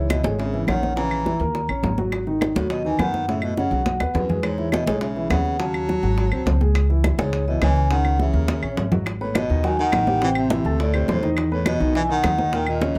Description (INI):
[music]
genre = Afro-Cuban jazz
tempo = 208 BPM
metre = 4/4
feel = straight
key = C# minor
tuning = A4 = 441 Hz
[part]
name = vibraphone with medium mallets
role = melody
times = 0.0-13.0 s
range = B4 to A#5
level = -28 LUFS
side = equal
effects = none
[part]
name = breathy baritone saxophone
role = second line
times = 0.0-13.0 s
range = F#2 to F#3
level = -31 LUFS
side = equal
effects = none
[part]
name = warm grand piano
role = accompaniment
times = 0.0-13.0 s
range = A2 to B5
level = -29 LUFS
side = equal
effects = none
[part]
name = upright bass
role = bass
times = 0.0-13.0 s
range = G#1 to F#2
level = -26 LUFS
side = equal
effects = none
[part]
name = bongos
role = percussion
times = 0.1-13.0 s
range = none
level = -33 LUFS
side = equal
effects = none
[part]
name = claves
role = percussion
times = 0.1-12.8 s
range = none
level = -34 LUFS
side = equal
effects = none
[part]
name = congas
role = percussion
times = 0.1-13.0 s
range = none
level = -29 LUFS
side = equal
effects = none
[sound]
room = moderate club reverb, RT60 0.5 s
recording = none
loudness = -22 LUFS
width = mono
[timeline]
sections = 0.0-9.1 A section; 9.1-13.0 B section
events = drum fill 3.9-4.4, 8.5-9.1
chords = 0.0 C#madd9; 1.0 A#dim; 1.5 D#5; 2.1 G#m7; 3.3 F#m; 3.9 B; 4.4 E6; 5.6 D#m7b5; 6.2 G#7b9; 6.8 C#madd9; 8.5 D#5; 9.1 G#m7; 10.2 Am; 10.8 Dsus2; 11.4 Esus2